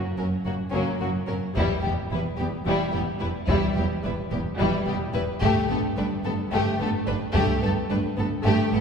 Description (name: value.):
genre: cinematic, epic orchestral film score.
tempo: 218 BPM (eighths).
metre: 7/8.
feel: straight.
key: unclear.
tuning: A4 = 440 Hz.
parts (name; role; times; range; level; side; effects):
warm studio violin section; melody; 0.2-8.8 s; C#4 to B4; -30 LUFS; left 4 dB; none.
warm symphonic violin section; second line; 0.2-8.8 s; G3 to E4; -31 LUFS; left 3 dB; none.
warm symphonic viola section; accompaniment; 0.2-8.8 s; F#3 to A3; -30 LUFS; right 1 dB; none.
dark symphonic double bass section; bass; 0.2-8.8 s; E1 to G1; -29 LUFS; right 2 dB; none.
warm studio cello section; bass; 0.2-8.8 s; E2 to G2; -30 LUFS; right 2 dB; none.
taiko ensemble; drums; 1.6-7.9 s; none; -30 LUFS; equal; none.
room: wet church reverb, RT60 2.7 s.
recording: recorded in a church or concert hall.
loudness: -23 LUFS.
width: side -6 dB against mid.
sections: 0.0-8.8 A section.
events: build-up 0.0-8.8.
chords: 0.0 F#; 1.6 Em; 5.4 Gadd9.